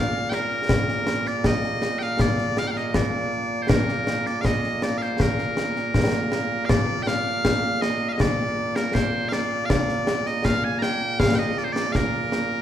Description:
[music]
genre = scottish traditional, Scottish pipe music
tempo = 80 BPM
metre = 2/4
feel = straight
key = Bb major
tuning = A4 = 439 Hz
[part]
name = loud bright bagpipes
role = melody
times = 0.0-12.6 s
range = Bb2 to Bb5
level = -24 LUFS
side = equal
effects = none
[part]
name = concert snare drum and concert bass drum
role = drums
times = 0.3-12.5 s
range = none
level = -24 LUFS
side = left 1 dB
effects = none
[sound]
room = wet recital hall reverb, RT60 1.8 s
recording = recorded in a church or concert hall, faint mains hum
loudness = -21 LUFS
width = side -10 dB against mid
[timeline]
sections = 0.0-6.7 A section; 6.7-12.6 B section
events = none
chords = none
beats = | 0.69 1.45 | 2.19 2.94 | 3.69 4.45 | 5.20 5.95 | 6.70 7.45 | 8.20 8.95 | 9.70 10.45 | 11.20 11.95

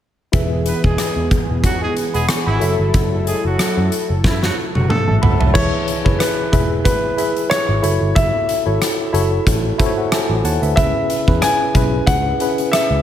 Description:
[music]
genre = 1980s-style pop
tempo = 92 BPM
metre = 4/4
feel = swing 55% on 16ths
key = E major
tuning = A4 = 440 Hz
[part]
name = tine electric piano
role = accompaniment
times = 0.3-13.0 s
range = C#3 to C#6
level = -21 LUFS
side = left 1 dB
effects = overdrive, fast stereo tremolo
[part]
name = brassy analog pad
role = sustained chords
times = 0.3-5.5 s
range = E3 to A4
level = -24 LUFS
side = equal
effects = chorus
[part]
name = vintage muted picked electric bass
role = bass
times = 0.3-13.0 s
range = E1 to F#2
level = -20 LUFS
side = equal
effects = none
[part]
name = huge arena drum kit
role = drums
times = 0.3-12.9 s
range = crash cymbal, hi-hat, kick drum, rim click, snare drum, toms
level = -18 LUFS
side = equal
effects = none
[part]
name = clear horn section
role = stabs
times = 0.7-5.2 s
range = E3 to B4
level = -25 LUFS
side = equal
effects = tape echo
[part]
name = warm concert grand piano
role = melody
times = 5.5-13.0 s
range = B4 to G#5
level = -20 LUFS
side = left 1 dB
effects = tape echo
[sound]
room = light reverb, small room ambience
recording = none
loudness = -14 LUFS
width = side -10 dB against mid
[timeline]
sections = 0.3-5.6 A section; 5.6-13.0 B section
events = drum fill 4.2-5.6; tine electric piano fill 9.5-10.8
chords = 0.3 E; 2.6 F#m7; 5.6 E; 7.8 F#m7; 10.8 C#m7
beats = | 0.34 0.99 1.64 2.29 | 2.94 3.60 4.25 4.90 | 5.55 6.21 6.86 7.51 | 8.16 8.81 9.47 10.12 | 10.77 11.42 12.07 12.73

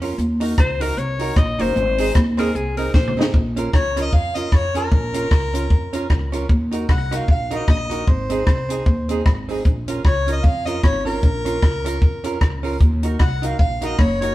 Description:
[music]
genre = ska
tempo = 152 BPM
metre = 4/4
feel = swing 58% on 8ths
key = Bb minor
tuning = A4 = 439 Hz
[part]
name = archtop guitar, miked and amplified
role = accompaniment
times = 0.0-14.3 s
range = C4 to Bb4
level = -27 LUFS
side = right 4 dB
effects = slapback echo
[part]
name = upright bass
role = bass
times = 0.0-14.3 s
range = Gb1 to F2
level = -24 LUFS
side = equal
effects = none
[part]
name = compact cocktail drum kit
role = drums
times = 0.0-14.3 s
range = hi-hat, kick drum, rim click, snare drum, toms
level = -17 LUFS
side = equal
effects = none
[part]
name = edgy alto saxophone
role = melody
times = 0.6-3.2 s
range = Ab4 to Eb5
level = -23 LUFS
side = left 4 dB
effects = none
[part]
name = mellow harmonica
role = melody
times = 3.7-14.3 s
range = Bb4 to Gb5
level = -25 LUFS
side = left 1 dB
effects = none
[sound]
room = moderate stone room reverb, RT60 1.2 s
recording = band playing live in one room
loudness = -17 LUFS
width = side -16 dB against mid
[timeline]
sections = 0.0-3.3 A section; 3.3-14.3 B section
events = alto saxophone solo 0.0-3.3; drum fill 2.9-3.3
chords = 0.2 Ebm; 1.8 Ab; 3.3 Bbm; 6.5 Ebm; 8.1 Ab; 9.7 Bbm; 12.8 Ebm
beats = | 0.18 0.58 0.97 1.37 | 1.76 2.15 2.55 2.94 | 3.34 3.73 4.12 4.52 | 4.92 5.31 5.71 6.10 | 6.49 6.89 7.28 7.68 | 8.07 8.47 8.86 9.26 | 9.65 10.05 10.44 10.84 | 11.23 11.62 12.02 12.41 | 12.81 13.20 13.60 13.99

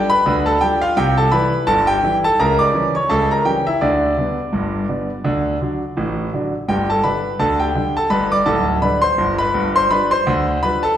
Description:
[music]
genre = ragtime piano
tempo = 84 BPM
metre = 2/4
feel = swing 56% on 16ths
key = G major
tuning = A4 = 442 Hz
[part]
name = clear concert grand piano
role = solo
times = 0.0-11.0 s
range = D1 to D6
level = -15 LUFS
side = equal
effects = none
[sound]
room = wet recital hall reverb, RT60 1.4 s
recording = recorded in a church or concert hall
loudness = -15 LUFS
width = side -10 dB against mid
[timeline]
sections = 0.0-11.0 A section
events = none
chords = 0.0 G7; 1.0 C; 2.4 C#dim7; 3.8 G/D; 5.3 D; 6.7 G; 9.5 G7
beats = 0.26 | 0.97 1.68 | 2.39 3.10 | 3.82 4.53 | 5.25 5.97 | 6.69 7.40 | 8.11 8.83 | 9.54 10.25 | 10.97

